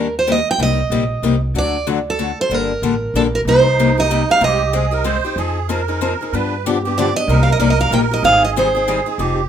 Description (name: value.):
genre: acoustic string swing (jazz manouche).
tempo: 188 BPM.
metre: 3/4.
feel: swing 60% on 8ths.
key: G minor, C minor from 3.5 s.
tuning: A4 = 440 Hz.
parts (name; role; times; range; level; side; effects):
picked steel-string acoustic guitar; melody; 0.0-9.1 s; A4 to G5; -17 LUFS; right 3 dB; none.
picked steel-string acoustic guitar; accompaniment; 0.0-9.4 s; C3 to A4; -20 LUFS; left 7 dB; none.
upright bass; bass; 0.0-9.4 s; F1 to G2; -20 LUFS; equal; none.
musette accordion; second line; 3.5-9.5 s; Eb4 to C5; -21 LUFS; right 8 dB; none.
room: moderate club reverb, RT60 0.8 s.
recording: minimal, uncompressed stereo recording.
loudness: -14 LUFS.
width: side -9 dB against mid.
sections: 0.0-3.5 A section; 3.5-9.5 B section.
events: none.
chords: 0.0 Ebmaj7; 0.6 Cm7; 1.6 D; 2.5 Gmadd9; 3.5 Cm7; 4.4 Abmaj7/C; 5.4 Fm7; 6.3 G7; 7.3 Cm7; 8.2 Abmaj7.